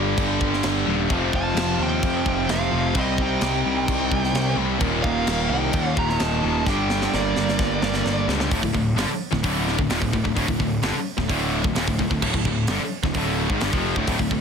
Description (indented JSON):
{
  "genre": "heavy metal",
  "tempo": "130 BPM",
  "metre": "4/4",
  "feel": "straight",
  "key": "D phrygian",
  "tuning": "A4 = 440 Hz",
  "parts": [
    { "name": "heavy high-gain guitar", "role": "riff", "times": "0.0-14.4 s", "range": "D2 to C4", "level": "-27 LUFS", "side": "left 12 dB", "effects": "distortion" },
    { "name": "heavy high-gain guitar", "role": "riff", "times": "0.0-14.4 s", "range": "D2 to C4", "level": "-27 LUFS", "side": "right 11 dB", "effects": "distortion" },
    { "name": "overdriven electric guitar", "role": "riff", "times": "0.0-14.4 s", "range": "D2 to C4", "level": "-29 LUFS", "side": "equal", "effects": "none" },
    { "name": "fuzz picked electric bass", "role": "bass", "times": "0.0-14.4 s", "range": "D1 to F2", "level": "-27 LUFS", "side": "equal", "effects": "overdrive" },
    { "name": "tight metal drum kit", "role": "drums", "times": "0.2-14.4 s", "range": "crash cymbal, hi-hat, kick drum, snare drum", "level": "-27 LUFS", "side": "equal", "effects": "none" },
    { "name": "high-gain lead guitar", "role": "melody", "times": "1.4-8.3 s", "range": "D5 to Bb5", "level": "-28 LUFS", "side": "right 4 dB", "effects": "distortion, digital delay" },
    { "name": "high-gain lead guitar", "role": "second line", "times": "1.4-8.2 s", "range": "Bb3 to G4", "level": "-31 LUFS", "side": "right 3 dB", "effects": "distortion" }
  ],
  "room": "studio ambience",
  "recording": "dense, heavily limited modern master",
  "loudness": "-20 LUFS",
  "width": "side -6 dB against mid",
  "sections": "0.0-8.5 A section; 8.5-14.4 B section",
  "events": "drum fill 6.7-8.5",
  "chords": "0.0 G5; 1.1 F; 3.0 Cm; 4.8 Eb; 6.7 Gm; 8.5 Dm"
}